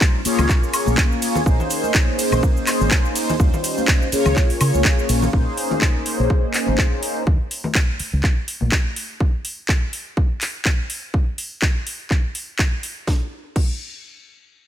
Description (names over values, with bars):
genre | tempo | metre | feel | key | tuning
filtered disco house | 124 BPM | 4/4 | swing 56% on 16ths | Bb dorian | A4 = 440 Hz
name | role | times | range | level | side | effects
mellow synth brass | accompaniment | 0.0-7.2 s | G3 to Db5 | -21 LUFS | left 1 dB | chorus, phaser, sidechain pumping, low-pass filter
electronic kick drum | drums | 0.0-13.7 s | none | -18 LUFS | equal | none
house drum kit | drums | 0.0-13.7 s | cabasa, crash cymbal, handclaps, hi-hat, ride cymbal, snare drum, woodblock | -24 LUFS | equal | overdrive, sidechain pumping on perc, sidechain pumping on hats, sidechain pumping on cymbals
maracas and congas | percussion | 0.0-9.2 s | none | -30 LUFS | left 3 dB | sidechain pumping on perc, low-pass filter on perc
fingered electric bass | bass | 0.3-8.7 s | Ab1 to Db3 | -20 LUFS | equal | sidechain pumping, low-pass filter
room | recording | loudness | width
little or no reverb | none | -17 LUFS | side -10 dB against mid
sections
0.0-5.3 A section; 5.3-13.1 B section; 13.1-14.7 C section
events
drop 0.0-5.3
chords
0.3 Db6; 1.5 Bbm11; 3.4 Eb13; 4.1 Db6; 5.3 Bbm11; 7.3 N.C.; 8.0 Bbm; 9.2 N.C.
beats
0.01 0.49 0.98 | 1.46 1.95 2.43 2.91 | 3.40 3.88 4.37 4.85 | 5.33 5.82 6.30 6.79 | 7.27 7.75 8.24 8.72 | 9.20 9.69 10.17 10.66 | 11.14 11.62 12.11 12.59 | 13.07 13.56